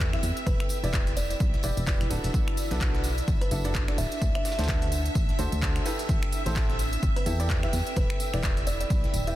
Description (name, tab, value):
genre	piano house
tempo	128 BPM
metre	4/4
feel	swing 58% on 16ths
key	E minor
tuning	A4 = 440 Hz
part	string machine, violins	sustained chords	0.0-9.4 s	E5	-38 LUFS	equal	ensemble chorus, sidechain pumping
part	clear upright piano	riff	0.0-9.4 s	D4 to E5	-35 LUFS	right 1 dB	sidechain pumping, digital delay
part	solid FM bass	bass	0.0-9.4 s	D1 to E2	-29 LUFS	equal	tube saturation, sidechain pumping
part	breakbeat sampler-style drum kit	drums	0.0-9.3 s	hi-hat, snare drum, tambourine	-43 LUFS	equal	none
part	electronic kick drum	drums	0.0-9.0 s	none	-27 LUFS	equal	studio reverb
part	house drum kit	drums	0.0-9.4 s	finger snaps, handclaps, hi-hat	-36 LUFS	equal	studio reverb
part	tambourine	percussion	0.0-9.4 s	none	-44 LUFS	equal	none
part	granular cloud pad	texture	0.0-9.4 s	C4 to A5	-39 LUFS	right 1 dB	built-in reverb, sidechain pumping
part	buzzing kalimba	melody	0.5-8.9 s	B4 to E5	-37 LUFS	right 1 dB	digital delay
room	little or no reverb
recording	dense, heavily limited modern master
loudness	-24 LUFS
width	side -14 dB against mid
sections	0.0-9.4 A section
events	none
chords	0.2 Em7; 2.3 Bm7; 4.0 D7; 5.9 Am7; 7.7 Em7